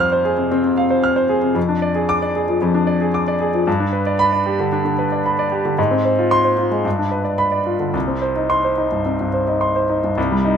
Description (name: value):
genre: classical, virtuoso piano study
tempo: 112 BPM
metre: 4/4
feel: uneven beats, rubato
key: C minor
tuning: A4 = 442 Hz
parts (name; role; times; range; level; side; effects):
- clear grand piano; solo; 0.0-10.6 s; C2 to F6; -16 LUFS; equal; none
room: light reverb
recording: none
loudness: -16 LUFS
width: side -7 dB against mid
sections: 0.0-10.2 A section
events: none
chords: 0.0 Fm; 1.6 Ddim/F; 3.7 G; 5.8 Fm/Ab; 6.8 G7; 7.9 Cm